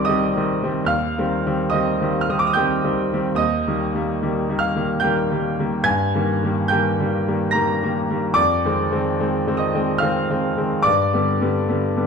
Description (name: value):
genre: classical, romantic nocturne for solo piano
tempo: 72 BPM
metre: 3/4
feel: rubato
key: C minor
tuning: A4 = 440 Hz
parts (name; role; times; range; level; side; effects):
- bright grand piano; solo; 0.0-12.1 s; C2 to Bb6; -18 LUFS; equal; none
room: moderate recital hall reverb, RT60 1.4 s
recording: dark, warm production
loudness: -18 LUFS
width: side -6 dB against mid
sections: 0.0-12.1 A section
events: none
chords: 0.0 Cm; 0.9 Cm/Eb; 3.4 Eb; 5.9 Eb/G; 8.4 Fm7; 10.9 G